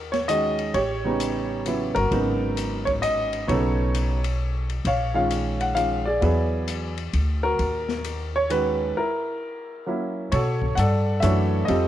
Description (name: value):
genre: jazz piano trio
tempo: 132 BPM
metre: 3/4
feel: swing 66% on 8ths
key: Eb minor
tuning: A4 = 441 Hz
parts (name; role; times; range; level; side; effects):
- clear concert grand piano; melody; 0.0-11.9 s; C#3 to Gb5; -23 LUFS; right 1 dB; none
- upright bass; bass; 0.0-11.9 s; G1 to B2; -26 LUFS; equal; none
- open jazz drum kit; drums; 0.1-11.8 s; hi-hat, kick drum, ride cymbal, snare drum; -34 LUFS; left 6 dB; none
room: light reverb, small room ambience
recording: 1960s-style stereo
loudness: -21 LUFS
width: side -12 dB against mid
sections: 0.0-10.3 A section; 10.3-11.9 B section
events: break 9.0-10.3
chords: 0.0 Ebm7; 0.7 A9; 2.1 Abm9; 3.5 B9; 4.8 Bbm7; 6.2 E9; 7.6 Ebm7; 9.0 Gb7; 10.3 Bm9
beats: 0.29 | 0.74 1.20 1.66 | 2.11 2.57 3.02 | 3.48 3.94 4.39 | 4.85 5.31 5.76 | 6.22 6.67 7.13 | 7.59 8.04 8.50 | 8.95 9.41 9.87 | 10.32 10.78 11.23 | 11.69